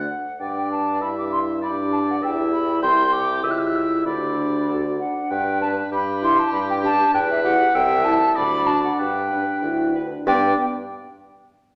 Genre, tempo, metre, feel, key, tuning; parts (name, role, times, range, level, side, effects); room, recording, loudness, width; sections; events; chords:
quick classical-period movement for wind quintet; 97 BPM; 2/4; straight; G major; A4 = 440 Hz
mellow hollow silver concert flute; melody; 0.0-10.6 s; E5 to F#6; -24 LUFS; equal
clear oboe; second line; 0.0-10.6 s; G4 to G5; -29 LUFS; equal
clear clarinet; accompaniment; 0.0-10.6 s; D4 to B4; -35 LUFS; equal
mellow French horn; accompaniment; 0.0-10.5 s; B3 to F#4; -28 LUFS; equal
warm bassoon; bass; 0.0-10.5 s; C2 to G2; -29 LUFS; equal
wet recital hall reverb, RT60 1.5 s; -21 LUFS; mono
0.4-10.3 A section; 10.3-11.6 B section
0.4 G; 1.0 C/G (rootless); 1.6 G5; 2.2 Em; 2.8 C; 3.4 C#dim; 4.1 G/D; 4.7 D; 5.3 G; 5.9 G69; 6.5 G5; 7.1 Em; 7.8 C; 8.4 D; 9.0 G